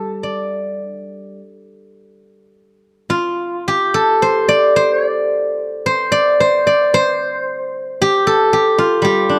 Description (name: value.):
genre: chinese traditional, Chinese solo plucked strings.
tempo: 50-59 BPM.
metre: 4/4.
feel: rubato.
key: G shang mode.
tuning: A4 = 440 Hz.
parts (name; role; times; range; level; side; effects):
steel-string zither; solo; 0.0-9.4 s; G3 to G5; -16 LUFS; equal; none.
room: light reverb.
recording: dry, close 1970s-style studio recording.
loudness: -16 LUFS.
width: mono.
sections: 0.0-2.6 A section; 2.6-9.4 B section.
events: none.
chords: none.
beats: 0.24 1.40 | 2.55 3.67 4.76 5.85 | 6.94 8.00 9.03.